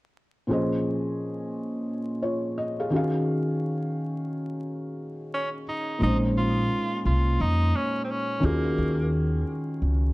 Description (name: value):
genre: hip hop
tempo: 87 BPM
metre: 4/4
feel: swing 59% on 16ths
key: Bb minor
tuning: A4 = 440 Hz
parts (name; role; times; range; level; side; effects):
- felt-muted upright piano; accompaniment; 0.5-10.1 s; Bb2 to F5; -26 LUFS; equal; low-pass filter
- bright tenor saxophone; melody; 5.3-9.1 s; Bb3 to F4; -30 LUFS; right 1 dB; low-pass filter, plate reverb, analog delay
- upright bass; bass; 6.0-10.1 s; Bb1 to F2; -24 LUFS; equal; none
room: moderate studio reverb, RT60 0.6 s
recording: dark, warm production, vinyl crackle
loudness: -24 LUFS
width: side -20 dB against mid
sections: 0.5-6.0 A section; 6.0-10.1 B section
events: none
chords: 0.5 Bbm11; 2.9 Ebm11; 6.0 Bbm11; 8.4 Ebm11